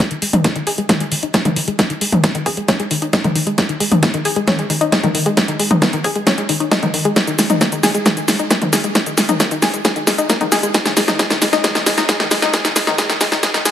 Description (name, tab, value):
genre	uplifting trance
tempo	134 BPM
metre	4/4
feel	straight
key	G# minor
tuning	A4 = 439 Hz
part	analog pluck	arpeggios	0.0-13.7 s	D#3 to G#4	-19 LUFS	left 3 dB	chorus, sidechain pumping, dub echo
part	big-room dance drum kit	drums	0.0-13.7 s	hi-hat, shaker, snare drum, toms	-16 LUFS	equal	none
part	electronic kick drum	drums	0.0-13.5 s	none	-20 LUFS	equal	overdrive, high-pass filter on kick
room	moderate lush hall reverb, RT60 1.8 s, digital ambience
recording	high-pass filter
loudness	-14 LUFS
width	side -10 dB against mid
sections	0.0-13.7 A section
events	build-up 0.0-13.7; drum fill 0.0-13.7; filter sweep on synth pluck 0.0-13.7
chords	none